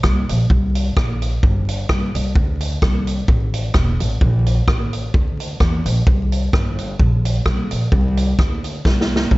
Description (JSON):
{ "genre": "ska", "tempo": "129 BPM", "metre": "4/4", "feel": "swing 55% on 8ths", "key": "unclear", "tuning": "A4 = 438 Hz", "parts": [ { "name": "upright bass", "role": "bass", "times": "0.0-9.4 s", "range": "E1 to E2", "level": "-19 LUFS", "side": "equal", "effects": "none" }, { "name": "swinging big-band drum kit", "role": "drums", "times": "0.0-9.4 s", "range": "hi-hat, kick drum, rim click, snare drum, toms", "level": "-18 LUFS", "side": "equal", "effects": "none" } ], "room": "little or no reverb", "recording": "vinyl crackle, nothing above 7.7 kHz", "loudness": "-16 LUFS", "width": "side -20 dB against mid", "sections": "0.0-9.4 A section", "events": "drum fill 8.9-9.4", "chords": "none" }